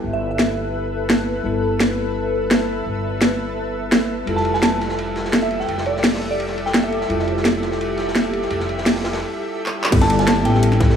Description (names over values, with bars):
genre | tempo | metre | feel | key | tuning
liquid drum and bass | 170 BPM | 4/4 | straight | G mixolydian | A4 = 443 Hz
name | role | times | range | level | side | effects
bell-like tine electric piano | accompaniment | 0.0-11.0 s | G3 to A4 | -25 LUFS | equal | slow stereo tremolo, dub echo
shimmering ambient pad | sustained chords | 0.0-11.0 s | G4 to E5 | -25 LUFS | left 1 dB | chorus, built-in reverb
upright bass | bass | 0.0-11.0 s | F1 to A1 | -25 LUFS | equal | none
soft synth bell | melody | 0.1-0.5, 4.4-7.3, 10.0-10.7 s | D5 to A5 | -25 LUFS | right 1 dB | chorus, dub echo
drum and bass drum kit | drums | 0.4-10.9 s | crash cymbal, handclaps, hi-hat, snare drum | -19 LUFS | equal | overdrive
crunchy breakbeat drum kit | drums | 4.3-11.0 s | hi-hat, ride cymbal, snare drum | -29 LUFS | equal | high-pass filter on cymbals, high-pass filter on hats, high-pass filter on snare, high-pass filter on room
electronic kick drum | drums | 9.9-10.9 s | none | -16 LUFS | left 1 dB | overdrive
room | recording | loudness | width
light reverb, small room reverb | none | -17 LUFS | side -8 dB against mid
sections
0.0-9.9 A section; 9.9-11.0 B section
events
filter sweep on ambient pad 0.0-9.9; break 9.2-9.9; drum fill 9.7; drop 9.9-11.0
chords
0.0 G69; 4.3 Fmaj9; 9.9 G69